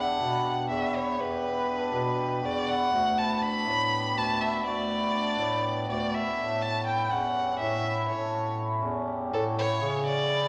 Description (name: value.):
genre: contemporary instrumental, chamber music in an uneven meter.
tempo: 244 BPM (eighths).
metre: 7/8.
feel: straight.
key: unclear.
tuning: A4 = 441 Hz.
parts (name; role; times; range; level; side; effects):
warm violin; melody; 0.0-10.5 s; A4 to B5; -31 LUFS; equal; none.
cimbalom; arpeggios; 0.0-10.5 s; B3 to A4; -33 LUFS; equal; none.
mellow bass clarinet; bass; 0.0-10.5 s; D2 to C#3; -34 LUFS; equal; none.
room: wet recital hall reverb, RT60 1.6 s.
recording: none.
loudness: -28 LUFS.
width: mono.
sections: 0.0-10.5 A section.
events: none.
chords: 0.0 Em7; 2.9 Dadd9; 6.4 A; 9.8 C#m.